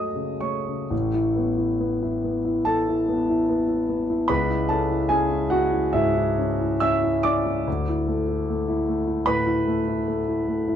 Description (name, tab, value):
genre	classical, impressionist solo piano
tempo	56-76 BPM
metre	4/4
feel	rubato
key	unclear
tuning	A4 = 439 Hz
part	warm concert grand piano	solo	0.0-10.8 s	A1 to E6	-21 LUFS	equal	none
room	moderate stone room reverb, RT60 1.0 s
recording	dark, warm production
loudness	-21 LUFS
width	side -9 dB against mid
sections	0.9-10.8 A section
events	none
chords	0.0 F#madd9; 0.9 Aadd9; 4.3 C#m7; 7.7 Dsus2